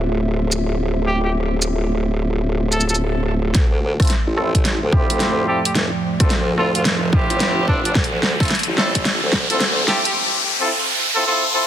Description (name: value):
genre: glitch hop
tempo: 109 BPM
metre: 4/4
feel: swing 63% on 16ths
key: D minor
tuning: A4 = 440 Hz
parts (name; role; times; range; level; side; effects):
- dark analog pad; sustained chords; 0.0-10.1 s; F3 to E5; -26 LUFS; right 2 dB; chorus, sidechain pumping
- formant-sweep wobble bass; bass; 0.0-9.9 s; D1 to D2; -21 LUFS; equal; chorus, tube saturation, high-pass filter
- pop drum kit; drums; 0.5-10.1 s; hi-hat, rim click, shaker, snare drum; -22 LUFS; equal; none
- clear trumpet; melody; 1.1-10.1 s; D4 to A4; -26 LUFS; right 1 dB; vintage 12-bit sampler grit, low-pass filter, tape echo
- electronic kick drum; drums; 3.5-9.5 s; none; -18 LUFS; equal; none
- riser; sound effects; 6.0-11.7 s; none; -22 LUFS; equal; none
- clear horn section; stabs; 4.0-11.7 s; C4 to A4; -22 LUFS; equal; sidechain pumping, low-pass filter, tape echo
room: moderate plate reverb, RT60 1.9 s, digital ambience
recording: dense, heavily limited modern master, high-pass filter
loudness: -16 LUFS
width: side -10 dB against mid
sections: 0.0-3.5 A section; 3.5-11.7 B section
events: filter sweep on analog synth pad 0.0-3.5, 3.5-11.7; build-up 3.5-11.7; drum fill 3.5-10.2; filter sweep on horn section 3.5-11.7; filter sweep 3.5-11.7; riser 6.0-11.7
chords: 0.0 Dm7